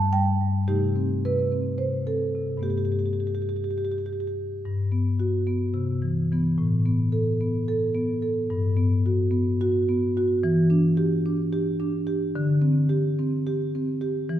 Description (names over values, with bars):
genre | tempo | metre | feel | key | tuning
classical, contemporary piece for solo marimba | 218 BPM (eighths) | 7/8 | straight | G major | A4 = 441 Hz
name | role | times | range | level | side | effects
marimba with soft mallets | solo | 0.0-14.4 s | G2 to A5 | -22 LUFS | equal | none
room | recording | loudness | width
wet recital hall reverb, RT60 1.4 s | none | -22 LUFS | side -11 dB against mid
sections
0.0-4.7 A section; 4.7-14.4 A section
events
none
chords
0.0 Gsus2; 0.7 Cm6; 2.7 Gadd9; 4.7 Gmaj7; 5.8 Cmaj7; 6.6 Asus2; 8.5 Gmaj7; 10.4 Em7; 12.3 D7sus4